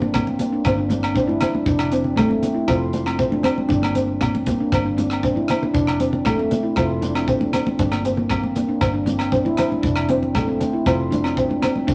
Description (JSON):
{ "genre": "highlife guitar band", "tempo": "118 BPM", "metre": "4/4", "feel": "straight", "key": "F major", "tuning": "A4 = 440 Hz", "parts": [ { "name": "fingerpicked steel-string acoustic guitar", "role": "accompaniment", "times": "0.0-11.9 s", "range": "A3 to D4", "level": "-27 LUFS", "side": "equal", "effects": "none" }, { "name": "handpan", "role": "arpeggios", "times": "0.0-11.9 s", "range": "A3 to F4", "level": "-24 LUFS", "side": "equal", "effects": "none" }, { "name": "fingered electric bass", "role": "bass", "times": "0.0-11.9 s", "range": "F1 to G1", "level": "-29 LUFS", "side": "equal", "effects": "none" }, { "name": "congas", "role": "percussion", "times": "0.0-11.9 s", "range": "none", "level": "-30 LUFS", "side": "equal", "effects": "none" }, { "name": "tight funk drum kit", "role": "drums", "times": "0.1-11.9 s", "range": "hi-hat, kick drum, rim click", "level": "-31 LUFS", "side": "equal", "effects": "none" }, { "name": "agogo bells", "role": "percussion", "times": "0.1-11.8 s", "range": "none", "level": "-32 LUFS", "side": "equal", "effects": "none" }, { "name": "shekere", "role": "percussion", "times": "0.1-11.9 s", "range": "none", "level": "-33 LUFS", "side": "equal", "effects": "none" } ], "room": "moderate studio reverb, RT60 0.9 s", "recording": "none", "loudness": "-20 LUFS", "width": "mono", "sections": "0.0-11.9 A section", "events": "drum fill 5.2-5.7", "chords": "0.0 Gm; 1.7 F; 3.7 Gm; 5.7 F; 7.8 Gm; 9.8 F", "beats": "0.14 0.65 1.16 | 1.67 2.18 2.69 3.20 | 3.71 4.21 4.72 5.24 | 5.75 6.26 6.77 7.28 | 7.79 8.30 8.81 9.32 | 9.83 10.34 10.86 11.37 | 11.88" }